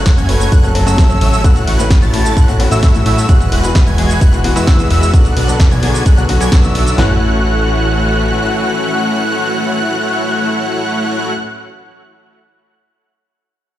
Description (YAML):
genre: EDM, festival progressive house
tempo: 130 BPM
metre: 4/4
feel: straight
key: A major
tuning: A4 = 438 Hz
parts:
  - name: clear grand piano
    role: accompaniment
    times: 0.0-11.3 s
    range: A2 to B4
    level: -21 LUFS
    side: left 2 dB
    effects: sidechain pumping, tape echo
  - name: warm studio string section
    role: sustained chords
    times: 0.0-11.3 s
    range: C#3 to F#4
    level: -25 LUFS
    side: left 1 dB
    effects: vintage 12-bit sampler grit, sidechain pumping
  - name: fat analog bass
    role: bass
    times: 0.0-8.3 s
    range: E1 to A2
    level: -15 LUFS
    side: equal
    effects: sidechain pumping
  - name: house drum kit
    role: drums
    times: 0.1-7.1 s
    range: handclaps, kick drum, snare drum, toms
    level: -10 LUFS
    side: equal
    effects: studio reverb
  - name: house drum kit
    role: drums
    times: 0.1-7.0 s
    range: hi-hat, ride cymbal, shaker, snare drum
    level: -22 LUFS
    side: right 1 dB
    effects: studio reverb
  - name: wide unison lead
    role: arpeggios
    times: 0.2-11.3 s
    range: E6 to A6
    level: -21 LUFS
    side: equal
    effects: ensemble chorus, sidechain pumping, tape echo
  - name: dense compressed supersaw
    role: riff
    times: 0.2-11.3 s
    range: G#3 to A5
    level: -18 LUFS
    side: equal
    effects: sidechain pumping, tape echo
room: light reverb, digital ambience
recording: played on a big sound system in a bare room, stone room reverb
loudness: -10 LUFS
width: side -13 dB against mid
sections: 0.0-7.0 A section; 7.0-10.7 B section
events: drop 0.0-7.0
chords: 0.0 F#m; 1.4 A6; 3.3 Eadd9; 5.1 Bm; 7.0 A6